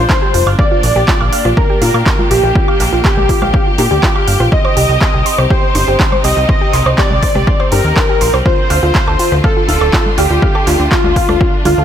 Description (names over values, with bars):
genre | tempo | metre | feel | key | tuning
progressive house | 122 BPM | 4/4 | straight | unclear | A4 = 440 Hz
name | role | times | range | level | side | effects
wide unison lead | melody | 0.0-11.8 s | F4 to Eb5 | -16 LUFS | equal | lush chorus, sidechain pumping, digital delay
soft round pluck | second line | 0.0-11.8 s | F4 to Eb5 | -22 LUFS | right 1 dB | none
clear studio string section | sustained chords | 0.0-11.8 s | C3 to Bb4 | -22 LUFS | left 1 dB | sidechain pumping
soft round pluck | arpeggios | 0.0-11.8 s | F4 to F6 | -20 LUFS | equal | chorus, sidechain pumping, digital delay
plucky analog bass | bass | 0.0-11.8 s | D1 to Bb2 | -15 LUFS | equal | sidechain pumping
big-room dance drum kit | drums | 0.1-11.8 s | handclaps, hi-hat, rim click | -20 LUFS | right 2 dB | overdrive, sidechain pumping on hats, sidechain pumping on cymbals
electronic kick drum | drums | 0.1-11.5 s | none | -14 LUFS | equal | overdrive
congas and woodblock | percussion | 0.1-11.8 s | none | -23 LUFS | right 3 dB | sidechain pumping on perc
room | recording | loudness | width
little or no reverb | none | -9 LUFS | side -9 dB against mid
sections
0.0-11.8 A section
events
none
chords
0.0 Gm7; 0.6 Bb6; 4.5 Cm; 8.5 Dm7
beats
0.10 | 0.59 1.08 1.57 2.06 | 2.56 3.05 3.54 4.03 | 4.52 5.01 5.51 6.00 | 6.49 6.98 7.47 7.96 | 8.46 8.95 9.44 9.93 | 10.42 10.92 11.41